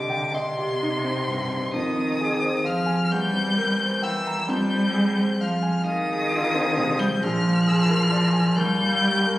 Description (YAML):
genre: classical, slow romantic movement for piano trio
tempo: 44 BPM (dotted quarters)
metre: 6/8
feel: rubato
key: unclear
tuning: A4 = 440 Hz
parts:
  - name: clear violin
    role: melody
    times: 0.0-9.4 s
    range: C6 to G6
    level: -26 LUFS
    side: left 2 dB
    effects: none
  - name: rich cello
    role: second line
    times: 0.0-9.4 s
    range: C3 to G3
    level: -24 LUFS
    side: right 1 dB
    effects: none
  - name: warm grand piano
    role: accompaniment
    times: 0.0-9.4 s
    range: Bb1 to Bb5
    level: -26 LUFS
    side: left 1 dB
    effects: none
room: wet concert hall reverb, RT60 1.8 s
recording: recorded on a phone in the room, club reverb, compression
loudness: -20 LUFS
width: side -16 dB against mid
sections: 0.0-9.4 A section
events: none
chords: 0.0 Cm; 1.8 Fm7; 3.1 C7/E; 4.5 Fm7; 7.2 Bb7; 8.6 Eb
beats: 0.35 | 1.75 3.11 | 4.49 5.87 | 7.22 8.57